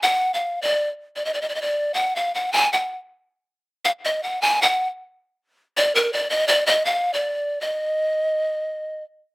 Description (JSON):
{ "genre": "balkan folk", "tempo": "221 BPM (eighths)", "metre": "7/8", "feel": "straight", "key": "Eb harmonic minor", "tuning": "A4 = 442 Hz", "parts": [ { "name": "breathy pan flute", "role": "solo", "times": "0.0-9.0 s", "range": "Bb4 to Ab5", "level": "-19 LUFS", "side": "equal", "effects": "none" } ], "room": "little or no reverb", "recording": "recorded outdoors, with no room sound", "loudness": "-20 LUFS", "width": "side -24 dB against mid", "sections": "0.0-9.3 A section", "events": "none", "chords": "none" }